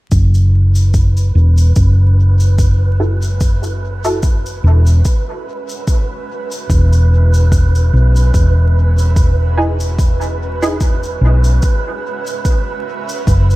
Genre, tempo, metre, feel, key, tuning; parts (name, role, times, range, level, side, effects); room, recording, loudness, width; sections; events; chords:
ambient dub; 73 BPM; 4/4; swing 55% on 16ths; A4 = 441 Hz
granular cloud pad; sustained chords; 1.3-13.6 s; G#3 to E5; -31 LUFS; equal; built-in reverb
hollow-body short-scale fingered electric bass; bass; 0.1-13.6 s; E1 to B1; -11 LUFS; equal
electronic kick drum; drums; 0.1-13.5 s; -14 LUFS; equal
shaker; drums; 0.1-13.6 s; -31 LUFS; left 2 dB
wind-like tuned noise texture; texture; 0.7-13.6 s; B4; -25 LUFS; right 4 dB; built-in reverb
filtered dub chord stab; stabs; 3.0-4.2, 9.6-10.8 s; D#4 to A4; -21 LUFS; right 1 dB; ensemble chorus, dub echo
digital ambience; vinyl crackle; -11 LUFS; side -19 dB against mid
0.1-13.6 A section
fade-in on ambient pad 0.1-13.6
0.1 F#7(no3); 6.7 E